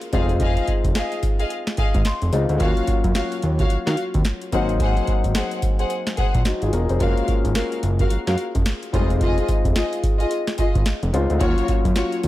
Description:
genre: R&B, new jack swing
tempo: 109 BPM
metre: 4/4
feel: swing 61% on 16ths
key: unclear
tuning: A4 = 440 Hz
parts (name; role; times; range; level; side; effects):
- dark concert grand piano; accompaniment; 0.0-12.3 s; Gb3 to C6; -26 LUFS; left 4 dB; none
- booming analog drum machine; drums; 0.0-12.3 s; hi-hat, kick drum, snare drum; -22 LUFS; equal; none
- warm studio string section; stabs; 0.1-12.1 s; F4 to Gb5; -27 LUFS; left 1 dB; digital delay
- fat analog bass; bass; 0.1-12.3 s; Fb1 to Eb3; -22 LUFS; equal; none
room: little or no reverb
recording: none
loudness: -18 LUFS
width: side -15 dB against mid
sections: 0.0-12.3 A section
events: grand piano fill 1.8-2.6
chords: 0.1 Fm7; 2.6 Ebm9; 4.5 Ab7; 7.0 Gbmaj7; 8.9 Fm7; 11.4 Ebm9

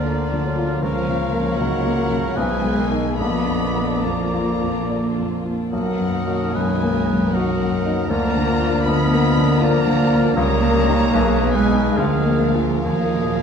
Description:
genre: classical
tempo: 64-81 BPM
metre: 3/4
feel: rubato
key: unclear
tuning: A4 = 438 Hz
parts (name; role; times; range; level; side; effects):
- clear grand piano; melody; 0.0-13.4 s; Bb1 to Eb5; -22 LUFS; left 3 dB; none
- dark symphonic violin section; melody; 0.0-13.4 s; D5 to Cb6; -29 LUFS; left 2 dB; none
- mellow clarinet; second line; 0.0-13.4 s; Bb4 to D5; -32 LUFS; left 1 dB; none
- rich symphonic violin section; second line; 0.0-13.4 s; G3 to Bb4; -31 LUFS; left 3 dB; none
- silver concert flute; second line; 0.0-13.4 s; Bb5 to F6; -32 LUFS; left 1 dB; none
- warm oboe; second line; 0.0-13.4 s; F4 to Eb5; -30 LUFS; right 2 dB; none
- dark bassoon; accompaniment; 0.0-13.4 s; Db3 to Bb3; -30 LUFS; right 3 dB; none
- warm symphonic viola section; accompaniment; 0.0-13.4 s; Eb3 to Cb4; -27 LUFS; right 1 dB; none
- mellow French horn section; sustained chords; 0.0-13.4 s; D3 to Cb4; -26 LUFS; left 5 dB; none
- rich symphonic cello section; bass; 0.0-13.4 s; D3 to Cb4; -27 LUFS; right 4 dB; none
- warm symphonic double bass section; bass; 0.0-13.4 s; Bb1 to Eb2; -26 LUFS; right 5 dB; none
room: moderate scoring stage reverb, RT60 1.5 s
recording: dark, warm production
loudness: -17 LUFS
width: side -6 dB against mid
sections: 0.0-13.4 A section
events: none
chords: 0.0 Bb/D; 0.8 Bbm/Db; 2.4 Abm/Cb; 3.2 Bb; 5.7 Bmaj7; 8.1 Bb/D; 10.4 Eb7/Db; 11.1 Abm/Cb; 12.0 Bb7/D; 12.8 Ebm

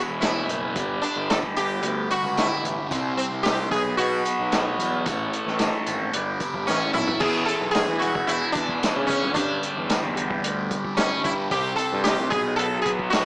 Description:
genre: psychedelic rock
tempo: 112 BPM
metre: 4/4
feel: straight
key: unclear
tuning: A4 = 440 Hz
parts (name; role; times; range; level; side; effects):
- combo organ; sustained chords; 0.0-13.2 s; F#4 to D6; -32 LUFS; right 1 dB; none
- thick fuzz guitar; riff; 0.0-13.2 s; E2 to C4; -29 LUFS; equal; distortion, phaser
- fuzz picked electric bass; bass; 0.1-13.1 s; E1 to G3; -29 LUFS; equal; overdrive
- sitar; melody; 0.2-13.2 s; C4 to A4; -25 LUFS; equal; slapback echo
- vintage drum kit; drums; 0.2-13.2 s; crash cymbal, hi-hat, kick drum, snare drum, toms; -27 LUFS; equal; none
- tambourine; percussion; 0.2-13.2 s; none; -41 LUFS; left 1 dB; none
room: light reverb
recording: small speaker sound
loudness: -21 LUFS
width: side -25 dB against mid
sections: 0.0-7.2 A section; 7.2-13.2 B section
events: drum fill 6.7-7.2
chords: 0.0 E; 0.8 G; 2.9 C; 3.7 B; 5.1 A; 6.1 G; 6.7 A; 7.2 E; 9.4 G; 11.5 C; 12.3 B

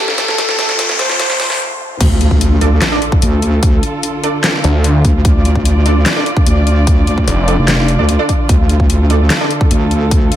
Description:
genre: heavy wobble dubstep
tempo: 148 BPM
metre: 4/4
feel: half-time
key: D minor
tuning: A4 = 441 Hz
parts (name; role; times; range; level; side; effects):
- soft supersaw; melody; 0.0-1.6 s; A4 to C5; -21 LUFS; equal; digital delay
- dark studio string section; sustained chords; 0.0-10.4 s; F2 to D5; -20 LUFS; equal; sidechain pumping
- riser, noise sweep and impact; sound effects; 0.0-3.6 s; none; -19 LUFS; equal; none
- dubstep drum kit; drums; 0.1-10.4 s; crash cymbal, handclaps, hi-hat, snare drum; -17 LUFS; left 1 dB; high-pass filter on snare, high-pass filter on hats, high-pass filter on cymbals, high-pass filter on room
- wobble bass; bass; 2.0-10.3 s; F1 to D2; -12 LUFS; equal; chorus, overdrive
- electronic kick drum; drums; 2.0-10.2 s; none; -13 LUFS; equal; none
- orchestra-hit-like synth stab; stabs; 2.6-9.5 s; D4 to D5; -21 LUFS; right 3 dB; built-in reverb, digital delay
- snarling distorted saw bass; bass; 4.6-7.6 s; F1 to D2; -11 LUFS; equal; overdrive
room: light reverb, digital ambience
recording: high-pass filter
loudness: -10 LUFS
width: side -12 dB against mid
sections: 0.0-2.0 A section; 2.0-10.4 B section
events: build-up 0.0-2.0; drum fill 0.0-1.6; riser 0.0-1.6; filter sweep on supersaw synth 0.0-2.0; noise sweep 0.4-2.0; break 1.6-2.0; drop 2.0-10.4; impact 2.0-3.6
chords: 0.4 F; 2.0 Dm

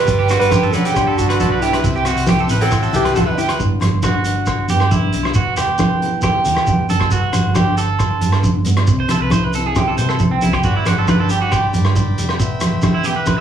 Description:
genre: highlife guitar band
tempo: 136 BPM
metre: 4/4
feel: straight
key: G major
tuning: A4 = 437 Hz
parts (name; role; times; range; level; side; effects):
- dark alto saxophone; melody; 0.0-3.4 s; E4 to B4; -19 LUFS; right 3 dB; none
- raspy tenor saxophone; second line; 0.0-3.3 s; C3 to G3; -26 LUFS; left 6 dB; none
- nylon-string guitar; accompaniment; 0.0-13.4 s; E2 to G4; -25 LUFS; left 6 dB; none
- combo organ; sustained chords; 0.0-3.6, 10.6-13.4 s; D5 to C6; -29 LUFS; left 2 dB; none
- electric guitar at the edge of break-up; arpeggios; 0.0-13.4 s; C4 to C5; -20 LUFS; right 4 dB; slapback echo
- hollow-body short-scale fingered electric bass; bass; 0.0-13.4 s; E1 to C3; -20 LUFS; right 2 dB; none
- vintage drum kit; drums; 0.1-13.4 s; hi-hat, kick drum, rim click; -23 LUFS; equal; none
- congas; percussion; 0.1-13.4 s; none; -21 LUFS; equal; none
- shekere; percussion; 0.1-13.4 s; none; -25 LUFS; right 3 dB; none
- agogo bells; percussion; 0.3-13.4 s; none; -29 LUFS; left 3 dB; none
room: light reverb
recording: studio ambience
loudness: -14 LUFS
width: side -9 dB against mid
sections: 0.0-3.6 A section; 3.6-13.4 B section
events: clean electric guitar solo 3.6-13.4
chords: 0.0 Em; 1.8 C; 3.6 G; 5.4 Em; 7.1 G; 8.9 C; 10.6 G; 12.4 Em

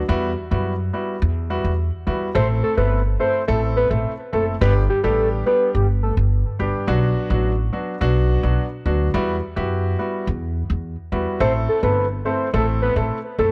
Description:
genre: dancehall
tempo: 106 BPM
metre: 4/4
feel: straight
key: E minor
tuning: A4 = 440 Hz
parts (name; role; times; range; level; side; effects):
- upright bass; bass; 0.0-13.5 s; F#1 to F#2; -23 LUFS; equal; none
- clear grand piano; accompaniment; 0.1-13.5 s; F#3 to A4; -26 LUFS; equal; none
- soft octave-layered synth lead; melody; 2.4-6.2, 11.4-13.5 s; G4 to C5; -23 LUFS; equal; chorus, analog delay
room: studio ambience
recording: dry, gritty hardware recording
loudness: -21 LUFS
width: mono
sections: 0.0-2.4 A section; 2.4-13.5 B section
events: none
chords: 0.1 Emadd9; 2.4 Am; 4.6 G; 6.9 Bm; 9.1 Emadd9; 11.4 Am

